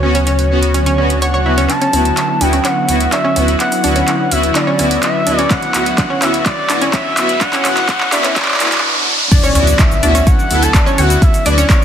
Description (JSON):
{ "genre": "progressive house", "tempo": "126 BPM", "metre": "4/4", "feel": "straight", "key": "D major", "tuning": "A4 = 438 Hz", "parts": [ { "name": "expressive synth lead", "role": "melody", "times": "0.0-11.8 s", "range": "C#5 to A5", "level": "-18 LUFS", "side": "equal", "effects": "chorus, sidechain pumping, digital delay" }, { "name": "lush unison pad", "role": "sustained chords", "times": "0.0-11.8 s", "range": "C#3 to F#4", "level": "-23 LUFS", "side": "right 1 dB", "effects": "chorus, sidechain pumping" }, { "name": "analog pluck", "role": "arpeggios", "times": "0.0-11.8 s", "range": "C#4 to D5", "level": "-20 LUFS", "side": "right 1 dB", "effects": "chorus, sidechain pumping, tape echo" }, { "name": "soft supersaw", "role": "stabs", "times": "0.0-11.5 s", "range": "B3 to A4", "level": "-19 LUFS", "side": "left 1 dB", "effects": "wide subtle chorus, sidechain pumping, tape echo" }, { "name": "dark detuned saw bass", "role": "bass", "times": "0.0-11.6 s", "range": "A1 to D2", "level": "-17 LUFS", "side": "equal", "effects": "sidechain pumping" }, { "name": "big-room dance drum kit", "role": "drums", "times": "0.1-11.8 s", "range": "cabasa, crash cymbal, handclaps, hi-hat", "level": "-18 LUFS", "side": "equal", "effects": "overdrive, high-pass filter on hats, studio reverb, high-pass filter on snare, high-pass filter on cymbals, high-pass filter on perc" }, { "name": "swell, riser and impact", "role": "sound effects", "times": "1.0-11.2 s", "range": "none", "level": "-22 LUFS", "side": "right 1 dB", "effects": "none" }, { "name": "electronic kick drum", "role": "drums", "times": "5.5-11.8 s", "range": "none", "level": "-12 LUFS", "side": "equal", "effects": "studio reverb" } ], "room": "moderate lush hall reverb, RT60 1.7 s, digital ambience", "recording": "dense, heavily limited modern master, high-pass filter", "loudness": "-11 LUFS", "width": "side -9 dB against mid", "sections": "0.0-1.7 A section; 1.7-9.3 B section; 9.3-11.8 C section", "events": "build-up 1.7-9.3; drum fill 1.7-8.8; filter sweep on synth pluck 1.7-9.3; filter sweep 1.7-9.3; riser 5.7-9.3; swell 8.4-9.3; drop 9.3-11.8; impact 9.3-11.2", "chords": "0.0 D6; 1.7 D69", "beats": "0.27 0.74 1.22 | 1.70 2.17 2.65 3.12 | 3.60 4.08 4.55 5.03 | 5.51 5.98 6.46 6.93 | 7.41 7.89 8.36 8.84 | 9.31 9.79 10.27 10.74 | 11.22 11.70" }